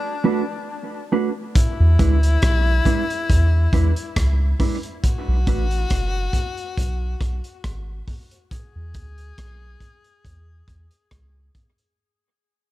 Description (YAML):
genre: dub reggae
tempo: 69 BPM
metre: 4/4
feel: straight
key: unclear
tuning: A4 = 438 Hz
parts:
  - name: bright tenor saxophone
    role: second line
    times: 0.0-11.5 s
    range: D4 to G#4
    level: -28 LUFS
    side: left 5 dB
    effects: dub echo
  - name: mellow electric guitar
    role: accompaniment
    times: 0.2-5.6 s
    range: G#3 to B4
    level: -24 LUFS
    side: right 4 dB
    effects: low-pass filter, dub echo
  - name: crunchy breakbeat drum kit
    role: drums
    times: 1.6-12.0 s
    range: hi-hat, kick drum, rim click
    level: -22 LUFS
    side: equal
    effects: none
  - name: soft dub sub bass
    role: bass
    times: 1.8-11.5 s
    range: F#1 to E2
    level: -18 LUFS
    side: equal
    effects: none
room: little or no reverb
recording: none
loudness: -18 LUFS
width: side -16 dB against mid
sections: 0.0-12.0 A section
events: break 0.0-1.6, 5.0-12.0; fade-out 0.0-12.0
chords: 0.0 Bm7; 1.6 E7; 5.0 B7(no3); 8.5 E7